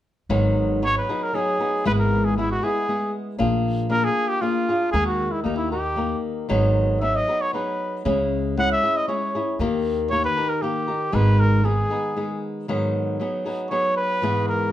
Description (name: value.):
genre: mexican folk, mariachi.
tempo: 116 BPM.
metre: 3/4.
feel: straight.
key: G# minor.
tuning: A4 = 437 Hz.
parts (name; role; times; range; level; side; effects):
flamenco guitar; accompaniment; 0.3-14.7 s; G#2 to A#4; -23 LUFS; left 1 dB; none.
upright bass; bass; 0.3-11.8 s; G#1 to D#2; -24 LUFS; right 1 dB; none.
warm trumpet; melody; 0.8-14.7 s; D#4 to F#5; -23 LUFS; equal; none.
room: light reverb.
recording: band playing live in one room.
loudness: -20 LUFS.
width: side -12 dB against mid.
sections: 0.3-12.7 A section; 12.7-14.7 A section.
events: none.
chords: 0.3 G#m7; 1.9 E/G#; 3.4 A#7; 4.9 D#sus4; 5.4 D#; 6.5 G#m7; 8.1 C#m; 9.6 D#; 11.1 G#m; 12.7 G#m7; 14.2 E/G#.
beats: | 0.30 0.82 1.34 | 1.85 2.37 2.88 | 3.39 3.90 4.41 | 4.93 5.45 5.97 | 6.49 7.02 7.54 | 8.06 8.57 9.09 | 9.60 10.11 10.62 | 11.13 11.64 12.16 | 12.68 13.19 13.71 | 14.22.